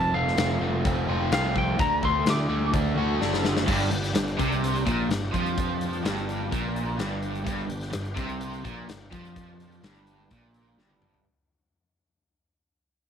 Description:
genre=classic rock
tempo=127 BPM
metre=4/4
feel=straight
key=G major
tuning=A4 = 440 Hz
part: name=lightly driven lead guitar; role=melody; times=0.0-2.7 s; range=F5 to D6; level=-27 LUFS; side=equal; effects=slapback echo
part: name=crunchy overdriven guitar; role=riff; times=0.0-11.3 s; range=F2 to F#4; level=-30 LUFS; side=right 1 dB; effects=none
part: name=fuzz picked electric bass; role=bass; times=0.0-11.2 s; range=F1 to F2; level=-30 LUFS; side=equal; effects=overdrive
part: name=huge arena drum kit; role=drums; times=0.3-11.2 s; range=crash cymbal, hi-hat, kick drum, snare drum, toms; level=-30 LUFS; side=left 2 dB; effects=none
part: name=tonewheel organ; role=sustained chords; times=3.4-11.2 s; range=C4 to G5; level=-40 LUFS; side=equal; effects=slow rotary speaker, overdrive, chorus vibrato
part: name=overdriven electric guitar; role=riff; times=3.7-11.2 s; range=G2 to F3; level=-31 LUFS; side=right 1 dB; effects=harmonic tremolo
room=light reverb, studio ambience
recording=1960s-style stereo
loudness=-23 LUFS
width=side -8 dB against mid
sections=0.0-3.7 A section; 3.7-11.3 B section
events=lead electric guitar solo 0.0-3.7; drum fill 3.2-3.7, 10.8-11.3; fade-out 3.7-11.3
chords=0.0 F; 1.8 D; 3.7 G

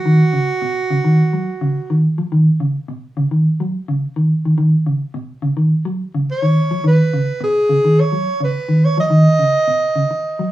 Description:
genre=afrobeat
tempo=106 BPM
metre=4/4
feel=straight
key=unclear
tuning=A4 = 441 Hz
part: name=breathy alto saxophone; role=melody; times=0.0-2.0, 6.3-10.5 s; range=F#4 to D#5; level=-18 LUFS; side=right 2 dB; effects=none
part: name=mellow electric guitar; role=arpeggios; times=0.1-10.5 s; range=B2 to F#3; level=-15 LUFS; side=equal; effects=none
room=wet studio reverb, RT60 0.6 s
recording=band playing live in one room, small room ambience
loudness=-14 LUFS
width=side -14 dB against mid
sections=0.0-10.5 A section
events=none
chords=0.0 Badd9

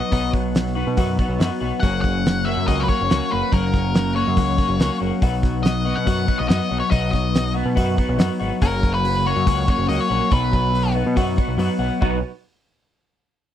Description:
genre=indie rock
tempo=141 BPM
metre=4/4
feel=straight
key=B major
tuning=A4 = 440 Hz
part: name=octave-fuzz lead guitar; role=melody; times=0.0-10.9 s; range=A#4 to F#5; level=-24 LUFS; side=left 3 dB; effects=distortion, slapback echo
part: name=clean electric guitar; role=riff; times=0.0-12.2 s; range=F#2 to F#4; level=-26 LUFS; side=right 8 dB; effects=ensemble chorus, slapback echo
part: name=twelve-string electric guitar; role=riff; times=0.0-12.2 s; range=F#2 to F#4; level=-24 LUFS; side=left 10 dB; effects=harmonic tremolo
part: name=growling picked electric bass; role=bass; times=0.1-12.2 s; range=F#1 to B2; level=-24 LUFS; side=equal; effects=overdrive
part: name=cloth-damped thuddy drum kit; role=drums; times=0.1-12.1 s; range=hi-hat, kick drum, snare drum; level=-20 LUFS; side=equal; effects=none
room=little or no reverb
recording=dry, close 1970s-style studio recording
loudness=-18 LUFS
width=side -10 dB against mid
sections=0.0-12.0 A section; 12.0-13.5 B section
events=none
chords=0.0 B; 1.8 F#; 5.2 B; 8.6 F#; 10.3 B

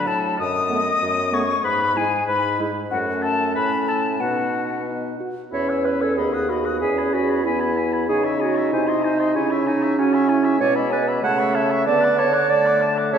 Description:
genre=quick classical-period movement for wind quintet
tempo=95 BPM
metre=2/4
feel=straight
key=E major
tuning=A4 = 439 Hz
part: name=silver concert flute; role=melody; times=0.0-13.2 s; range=F#5 to E6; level=-25 LUFS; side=left 5 dB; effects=none
part: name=warm oboe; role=second line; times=0.0-13.2 s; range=F#4 to B5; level=-28 LUFS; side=left 2 dB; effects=none
part: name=clear clarinet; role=accompaniment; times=0.0-13.2 s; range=B3 to F#5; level=-22 LUFS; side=right 4 dB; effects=none
part: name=warm French horn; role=accompaniment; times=0.0-13.2 s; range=F#3 to F#4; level=-26 LUFS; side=left 1 dB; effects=none
part: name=warm bassoon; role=bass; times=0.0-13.2 s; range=D#2 to D3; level=-26 LUFS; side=equal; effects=none
room=wet concert hall reverb, RT60 2.1 s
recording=heard from further back in the room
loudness=-18 LUFS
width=side -8 dB against mid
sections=0.0-5.5 A section; 5.5-13.2 B section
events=none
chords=0.4 B7/F#; 1.6 E/G#; 2.9 F#m; 4.2 B; 5.5 E; 6.2 B/D#; 6.8 E; 8.1 C#m; 8.7 G#/B#; 9.4 C#m; 10.6 E7/B; 11.2 A/C#; 11.9 D

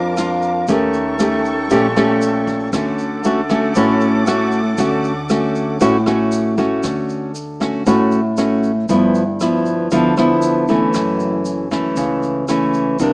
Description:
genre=bossa nova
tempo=117 BPM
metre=4/4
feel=straight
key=D major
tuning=A4 = 442 Hz
part: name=hollow small flute group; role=second line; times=0.0-6.5 s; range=A4 to Bb4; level=-26 LUFS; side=right 1 dB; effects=none
part: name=nylon-string guitar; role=accompaniment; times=0.0-13.1 s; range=F2 to G4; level=-14 LUFS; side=equal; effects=none
part: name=warm studio violin section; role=sustained chords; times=0.0-6.8 s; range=C#4 to D6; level=-28 LUFS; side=equal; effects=none
part: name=upright bass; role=bass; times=0.0-13.1 s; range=F#1 to F2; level=-32 LUFS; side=equal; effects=none
part: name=jazz brush drum kit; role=drums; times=0.2-13.1 s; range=hi-hat, kick drum, rim click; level=-30 LUFS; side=equal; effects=none
part: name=tube shaker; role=percussion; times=0.2-13.1 s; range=none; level=-36 LUFS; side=right 1 dB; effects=none
room=light reverb, small room ambience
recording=rough home demo mix, small speaker sound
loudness=-14 LUFS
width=side -29 dB against mid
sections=0.0-6.8 A section; 6.8-13.1 B section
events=none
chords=0.0 Bbmaj7; 0.7 Eb7#11; 2.7 Dmaj7; 8.9 G13; 10.9 F#m7

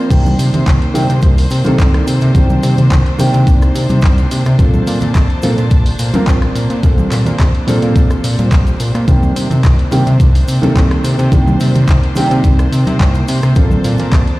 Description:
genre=nu-disco, nu disco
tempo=107 BPM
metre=4/4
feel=straight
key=unclear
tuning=A4 = 440 Hz
part: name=dark baby grand piano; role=accompaniment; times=0.0-14.4 s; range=Eb3 to Bb4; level=-18 LUFS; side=right 1 dB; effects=tape echo
part: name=rich studio string section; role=sustained chords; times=0.0-14.4 s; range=Eb3 to A5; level=-24 LUFS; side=equal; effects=sidechain pumping
part: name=fat analog bass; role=bass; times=0.1-14.2 s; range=Bb1 to C3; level=-14 LUFS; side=equal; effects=none
part: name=electronic kick drum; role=drums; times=0.1-14.2 s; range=none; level=-11 LUFS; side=equal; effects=none
part: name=pop drum kit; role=drums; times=0.1-14.4 s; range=crash cymbal, handclaps, hi-hat, rim click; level=-25 LUFS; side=equal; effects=none
part: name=cabasa and congas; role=percussion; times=0.1-14.2 s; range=none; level=-20 LUFS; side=equal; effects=none
room=light reverb, small room ambience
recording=played on a big sound system in a bare room, stone room reverb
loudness=-10 LUFS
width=side -19 dB against mid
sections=0.0-14.4 A section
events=none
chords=0.1 Cm9; 4.6 Bbmaj9; 9.1 Cm9; 13.6 Bbmaj9

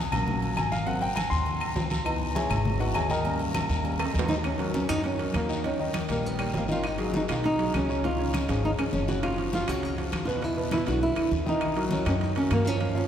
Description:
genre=Afro-Cuban jazz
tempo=201 BPM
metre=4/4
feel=straight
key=Eb minor from 4.4 s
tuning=A4 = 440 Hz
part: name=upright bass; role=bass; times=0.0-13.1 s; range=Gb1 to G2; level=-31 LUFS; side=equal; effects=none
part: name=dark baby grand piano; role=accompaniment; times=0.1-13.1 s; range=Cb3 to B#5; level=-30 LUFS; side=left 1 dB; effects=none
part: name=agogo bells and timbales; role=percussion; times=0.1-13.0 s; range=none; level=-35 LUFS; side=right 2 dB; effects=none
part: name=claves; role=percussion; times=0.1-12.7 s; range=none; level=-41 LUFS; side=left 6 dB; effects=none
part: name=congas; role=percussion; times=0.1-13.1 s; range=none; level=-34 LUFS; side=left 1 dB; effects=none
part: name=guiro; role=percussion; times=0.1-13.1 s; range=none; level=-42 LUFS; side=left 4 dB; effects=none
part: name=flamenco guitar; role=melody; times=4.3-13.1 s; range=Bb3 to Gb4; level=-28 LUFS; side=right 1 dB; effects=none
room=wet cathedral reverb, RT60 6.0 s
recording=recorded in a church or concert hall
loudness=-24 LUFS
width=side -9 dB against mid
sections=0.0-4.4 A section; 4.4-13.1 B section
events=grand piano solo 0.0-4.4; drum fill 4.0-4.4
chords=0.0 D#m7 (rootless); 0.9 G#7; 2.1 C#m7; 3.3 D#7; 4.4 Ebm7; 5.6 Eb7; 6.8 Abm7; 8.0 Db; 9.2 Gb5; 10.4 E5; 11.6 Ebm

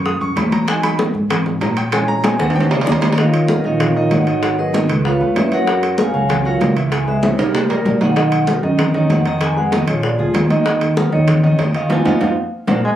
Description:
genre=Afro-Cuban jazz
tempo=193 BPM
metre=4/4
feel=straight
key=Eb minor from 3.2 s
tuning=A4 = 440 Hz
part: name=warm concert grand piano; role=accompaniment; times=0.0-12.8 s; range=Eb3 to D#6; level=-19 LUFS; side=right 2 dB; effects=none
part: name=upright bass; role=bass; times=0.0-12.8 s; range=Ab1 to G#2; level=-20 LUFS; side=equal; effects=none
part: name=bongos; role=percussion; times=0.1-12.8 s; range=none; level=-23 LUFS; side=left 3 dB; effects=none
part: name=congas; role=percussion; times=0.1-12.8 s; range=none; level=-22 LUFS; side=left 1 dB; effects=none
part: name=timbales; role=percussion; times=0.4-12.8 s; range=none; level=-23 LUFS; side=right 3 dB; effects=none
part: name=vibraphone with medium hard mallets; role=melody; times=3.2-12.9 s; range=Eb4 to A#5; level=-21 LUFS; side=equal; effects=plate reverb
part: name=bright trombone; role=second line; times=12.8-12.9 s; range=Ab3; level=-17 LUFS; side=left 1 dB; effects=none
room=moderate studio ambience, RT60 0.5 s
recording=recorded on a phone in the room, club reverb, compression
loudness=-14 LUFS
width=side -11 dB against mid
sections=0.0-3.2 A section; 3.2-13.0 A section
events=grand piano solo 0.0-3.2; drum fill 2.2-3.2, 7.2-8.2, 12.5-13.0; vibraphone solo 3.2-13.0; band accent 11.9-13.0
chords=0.0 B; 0.7 Emaj7; 1.9 A#m7b5; 2.6 D#7b9; 3.2 Ebm11; 4.4 Abm9; 5.1 Db7alt; 5.7 Gbmaj9; 6.9 Dbm7; 7.5 C5; 8.2 Bmaj7#11; 9.4 Fm7b5; 10.0 Bb7; 10.7 Ebm9; 11.9 Fm7b5

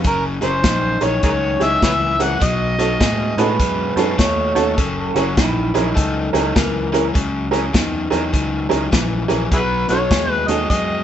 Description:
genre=electric blues shuffle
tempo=101 BPM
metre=4/4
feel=swing 63% on 8ths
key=F# mixolydian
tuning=A4 = 440 Hz
part: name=overdriven electric guitar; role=riff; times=0.0-11.0 s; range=F#2 to A3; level=-22 LUFS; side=left 3 dB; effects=none
part: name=fingered electric bass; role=bass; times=0.0-11.0 s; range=F#1 to A2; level=-24 LUFS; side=equal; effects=none
part: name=natural country drum kit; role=drums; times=0.0-10.9 s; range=hi-hat, kick drum, snare drum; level=-20 LUFS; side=equal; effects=none
part: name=overdriven harmonica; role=melody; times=0.1-3.6, 9.5-11.0 s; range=E4 to F#5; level=-19 LUFS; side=left 1 dB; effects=none
part: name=honky-tonk upright piano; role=accompaniment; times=0.4-10.6 s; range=C#4 to C#5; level=-22 LUFS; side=right 4 dB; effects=none
part: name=electric guitar through a small old amp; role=second line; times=3.4-7.1 s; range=E4 to C#5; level=-22 LUFS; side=right 3 dB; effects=none
room=light reverb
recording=band playing live in one room, nothing above 8.0 kHz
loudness=-15 LUFS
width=side -10 dB against mid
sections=0.0-11.0 A section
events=none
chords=0.0 F#9; 2.4 B9; 4.8 F#9; 9.5 B9

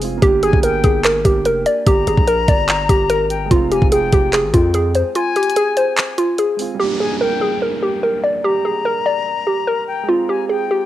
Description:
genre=hip hop, trap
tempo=146 BPM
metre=4/4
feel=half-time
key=G phrygian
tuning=A4 = 440 Hz
part: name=dark grand piano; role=accompaniment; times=0.0-10.9 s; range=G3 to G4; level=-28 LUFS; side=right 9 dB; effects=cassette tape
part: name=hard-hitting 808-style bass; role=bass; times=0.0-5.0 s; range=F1 to F2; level=-22 LUFS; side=equal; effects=none
part: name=trap drum kit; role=drums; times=0.0-6.7 s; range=handclaps, hi-hat, kick drum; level=-16 LUFS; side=equal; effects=cassette tape
part: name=hollow square pluck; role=melody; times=0.2-10.9 s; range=F4 to D5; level=-16 LUFS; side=equal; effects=chorus, cassette tape
part: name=silver concert flute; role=second line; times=0.4-10.9 s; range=G5 to Bb5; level=-24 LUFS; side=left 7 dB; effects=cassette tape, analog delay
part: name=downlifter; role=sound effects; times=6.8-10.1 s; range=none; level=-30 LUFS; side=equal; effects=none
room=digital ambience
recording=home recording on cassette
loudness=-14 LUFS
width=side -13 dB against mid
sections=0.0-6.8 A section; 6.8-10.9 B section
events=break 5.2-6.8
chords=0.2 Gm; 3.5 Fm; 6.8 Gm; 10.1 Fm

